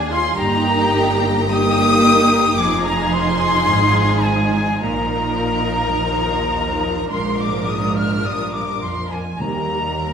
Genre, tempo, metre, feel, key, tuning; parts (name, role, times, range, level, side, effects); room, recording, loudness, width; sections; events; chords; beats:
classical, slow romantic movement for symphony orchestra; 49-56 BPM; 4/4; rubato; Eb major; A4 = 442 Hz
warm studio violin section; melody; 0.0-10.1 s; G4 to Bb4; -25 LUFS; left 3 dB
rich studio violin section; second line; 0.0-10.1 s; Ab5 to F6; -25 LUFS; left 2 dB
warm studio viola section; accompaniment; 0.0-10.1 s; Eb3 to F4; -22 LUFS; right 2 dB
rich studio cello section; bass; 0.0-10.1 s; Eb2 to Bb2; -24 LUFS; right 3 dB
rich studio double bass section; bass; 0.0-10.1 s; F1 to Eb2; -25 LUFS; right 3 dB
bright concert flute; second line; 0.1-10.1 s; Ab5 to F6; -21 LUFS; left 3 dB
timpani; percussion; 9.4-10.1 s; Eb3; -28 LUFS; right 1 dB
wet scoring stage reverb, RT60 1.5 s; minimal, uncompressed stereo recording; -15 LUFS; side -7 dB against mid
0.0-10.1 A section
0.4 Eb/G; 2.6 Fm7; 4.8 Bbsus4; 7.1 Bb; 9.4 Eb
| 0.39 1.51 2.59 3.68 | 4.82 5.97 7.11 8.25 | 9.40